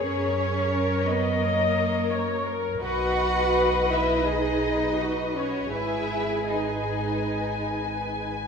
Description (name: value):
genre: cinematic, emotional film score for orchestra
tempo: 79-87 BPM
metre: 4/4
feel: rubato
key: unclear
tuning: A4 = 441 Hz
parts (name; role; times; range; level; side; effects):
- muted studio violin section; melody; 0.0-8.3 s; A#4 to F#5; -32 LUFS; left 2 dB; none
- muted studio violin section; second line; 0.0-8.5 s; A#4 to G#5; -30 LUFS; left 4 dB; none
- muted studio viola section; accompaniment; 0.0-8.3 s; F#4 to D#5; -28 LUFS; left 2 dB; none
- muted studio cello section; bass; 0.0-8.4 s; A#3 to F#4; -29 LUFS; right 3 dB; none
- muted studio double bass section; bass; 0.0-8.5 s; G#1 to F#2; -31 LUFS; right 2 dB; none
room: moderate scoring stage reverb, RT60 1.9 s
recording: none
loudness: -23 LUFS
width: side -6 dB against mid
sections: 0.0-8.5 A section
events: none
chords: 0.0 F#; 2.8 B; 5.7 G#m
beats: | 0.03 0.73 1.44 2.14 | 2.84 3.56 4.27 4.99 | 5.74 6.48 7.23 7.98